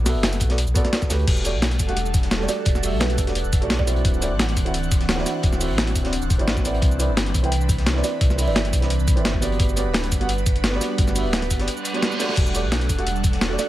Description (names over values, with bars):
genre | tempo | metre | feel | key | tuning
liquid drum and bass | 173 BPM | 4/4 | straight | E minor | A4 = 440 Hz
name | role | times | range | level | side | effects
felt-muted upright piano | accompaniment | 0.0-13.7 s | A3 to G5 | -28 LUFS | right 2 dB | tape echo
sub bass with octave | bass | 0.0-13.6 s | D1 to D2 | -24 LUFS | equal | tube saturation
breakbeat sampler-style drum kit | drums | 0.1-13.7 s | crash cymbal, hi-hat, shaker, snare drum | -25 LUFS | equal | none
crunchy breakbeat drum kit | drums | 0.1-13.7 s | hi-hat, snare drum | -33 LUFS | left 1 dB | high-pass filter on hats, high-pass filter on snare, high-pass filter on room
electronic kick drum | drums | 0.4-13.3 s | none | -21 LUFS | equal | none
airy breathy pad | sustained chords | 1.6-13.7 s | E3 to F#5 | -29 LUFS | right 1 dB | chorus, phaser, sidechain pumping
kalimba | melody | 2.5-4.1, 8.0-9.0, 13.6-13.7 s | B4 to D5 | -31 LUFS | right 7 dB | tape echo
reverse cymbal | sound effects | 11.8-12.4 s | none | -30 LUFS | right 2 dB | none
room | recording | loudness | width
studio reverb | none | -18 LUFS | side -14 dB against mid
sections
0.0-1.3 A section; 1.3-13.7 A section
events
drop 0.0-1.3, 1.3-13.7; reverse cymbal 11.8-12.4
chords
0.0 Bm7; 1.3 Em11; 4.0 D9; 6.8 Cmaj9; 9.6 Gmaj7; 12.4 Em11